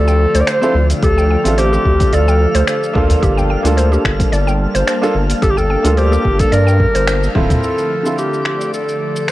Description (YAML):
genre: organic downtempo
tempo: 109 BPM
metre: 4/4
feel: swing 54% on 16ths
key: G dorian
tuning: A4 = 438 Hz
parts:
  - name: mellow clarinet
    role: melody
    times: 0.0-9.3 s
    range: G4 to D5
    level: -18 LUFS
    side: left 1 dB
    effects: ping-pong delay
  - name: felt-muted upright piano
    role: accompaniment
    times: 0.0-9.3 s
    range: D3 to E5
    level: -21 LUFS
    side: right 2 dB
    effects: sidechain pumping, tape echo
  - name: warm analog pad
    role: sustained chords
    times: 0.0-9.3 s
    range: D3 to A5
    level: -23 LUFS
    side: equal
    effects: chorus, sidechain pumping
  - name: mallet-like synth pluck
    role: arpeggios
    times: 0.0-7.2 s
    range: G4 to G5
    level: -22 LUFS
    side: equal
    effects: chorus, tape echo
  - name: round analog bass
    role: bass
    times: 0.0-7.5 s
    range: D1 to G2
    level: -15 LUFS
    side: equal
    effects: sidechain pumping
  - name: twinkling granular texture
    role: texture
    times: 0.0-9.3 s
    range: D5 to F5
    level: -30 LUFS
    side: right 1 dB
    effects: built-in reverb
  - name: deep house drum kit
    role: drums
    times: 0.1-9.3 s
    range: finger snaps, hi-hat, shaker, toms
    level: -24 LUFS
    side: left 1 dB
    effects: none
  - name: electronic kick drum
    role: drums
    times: 1.0-7.5 s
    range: none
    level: -17 LUFS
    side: equal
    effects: none
  - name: udu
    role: percussion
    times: 3.1-7.6 s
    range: none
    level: -19 LUFS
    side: equal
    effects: none
room: light reverb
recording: worn, warbling old tape, cassette tape, warbly pitch drift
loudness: -12 LUFS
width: side -16 dB against mid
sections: 0.0-7.6 A section; 7.6-9.3 B section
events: band accent 7.1; drum fill 7.4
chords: 0.0 Dm7; 3.2 Gm7; 7.6 G7(no3)